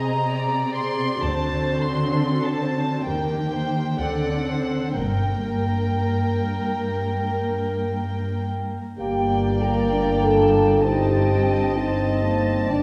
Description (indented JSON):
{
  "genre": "classical, slow romantic movement for symphony orchestra",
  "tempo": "59-66 BPM",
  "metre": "4/4",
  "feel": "rubato",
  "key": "G minor",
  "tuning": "A4 = 440 Hz",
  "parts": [
    { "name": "warm chamber violin section", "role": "melody", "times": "0.0-12.8 s", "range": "F#5 to C6", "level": "-32 LUFS", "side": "equal", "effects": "none" },
    { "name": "warm chamber violin section", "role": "second line", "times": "0.0-12.8 s", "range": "A4 to Eb5", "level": "-34 LUFS", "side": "equal", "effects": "none" },
    { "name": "dark chamber viola section", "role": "accompaniment", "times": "0.0-12.8 s", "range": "Bb3 to Bb4", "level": "-31 LUFS", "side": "equal", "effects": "none" },
    { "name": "dark chamber cello section", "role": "bass", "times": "0.0-12.8 s", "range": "G2 to Eb3", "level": "-28 LUFS", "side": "equal", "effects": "none" },
    { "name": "clear chamber double bass section", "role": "bass", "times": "1.2-12.8 s", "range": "G1 to Eb2", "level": "-29 LUFS", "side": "equal", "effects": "none" },
    { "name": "dark cor anglais", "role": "second line", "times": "9.0-12.8 s", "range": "G5 to A5", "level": "-34 LUFS", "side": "equal", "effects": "none" },
    { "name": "flute section", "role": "second line", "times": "9.0-12.8 s", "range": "D5 to Bb5", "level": "-33 LUFS", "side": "equal", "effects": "none" },
    { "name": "mellow clarinet", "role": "second line", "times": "9.0-12.8 s", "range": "Bb3 to Eb4", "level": "-29 LUFS", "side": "equal", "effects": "none" },
    { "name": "mellow bassoon", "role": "accompaniment", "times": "9.0-12.8 s", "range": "Bb3 to D4", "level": "-31 LUFS", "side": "equal", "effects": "none" },
    { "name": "mellow French horn section", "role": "sustained chords", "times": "9.0-12.8 s", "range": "D4 to Bb4", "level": "-24 LUFS", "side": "equal", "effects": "none" }
  ],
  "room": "wet scoring stage reverb, RT60 2.0 s",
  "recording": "heard from further back in the room",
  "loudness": "-22 LUFS",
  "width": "mono",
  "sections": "0.0-9.0 A section; 9.0-12.8 A section",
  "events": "none",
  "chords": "0.0 Ab/C; 1.2 D7; 3.1 Eb; 4.0 D7; 5.0 Gm; 10.8 Am7b5/G"
}